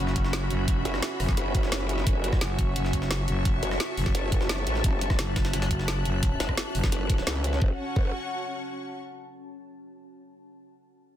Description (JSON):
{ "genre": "dark technical drum and bass", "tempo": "173 BPM", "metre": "4/4", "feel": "straight", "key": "F# minor", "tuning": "A4 = 440 Hz", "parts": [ { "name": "deep dark ambient pad", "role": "sustained chords", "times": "0.0-7.8 s", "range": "C#4 to A5", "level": "-34 LUFS", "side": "right 1 dB", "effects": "chorus, built-in reverb, vintage 12-bit sampler grit, sidechain pumping" }, { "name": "growling FM bass", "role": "bass", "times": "0.0-6.9 s", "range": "F#1", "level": "-28 LUFS", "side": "equal", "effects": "none" }, { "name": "rich studio string section", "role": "texture", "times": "0.0-9.0 s", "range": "C#4 to F#6", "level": "-35 LUFS", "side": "left 1 dB", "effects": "sidechain pumping" }, { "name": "jungle sampler-style drum kit", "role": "drums", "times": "0.1-7.6 s", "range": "hi-hat, snare drum", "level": "-38 LUFS", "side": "equal", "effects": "high-pass filter on hats, high-pass filter on snare" }, { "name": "drum and bass drum kit", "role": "drums", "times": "0.2-7.5 s", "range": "hi-hat, rim click, snare drum", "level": "-32 LUFS", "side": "right 1 dB", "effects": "none" }, { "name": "electronic kick drum", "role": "drums", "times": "0.2-8.0 s", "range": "none", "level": "-26 LUFS", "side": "equal", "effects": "none" }, { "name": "growl bass", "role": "bass", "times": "0.9-8.1 s", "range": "F#1 to C#2", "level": "-29 LUFS", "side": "equal", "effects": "chorus, tube saturation, sidechain pumping" } ], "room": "light reverb", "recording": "dense, heavily limited modern master", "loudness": "-24 LUFS", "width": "side -11 dB against mid", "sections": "0.0-7.6 A section; 7.6-9.0 B section", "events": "drop 0.0-7.6", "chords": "0.0 F#5", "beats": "0.33 | 0.68 1.03 1.37 1.72 | 2.07 2.41 2.76 3.11 | 3.45 3.80 4.15 4.49 | 4.84 5.19 5.54 5.88 | 6.23 6.58 6.92 7.27 | 7.62 7.96 8.31 8.66" }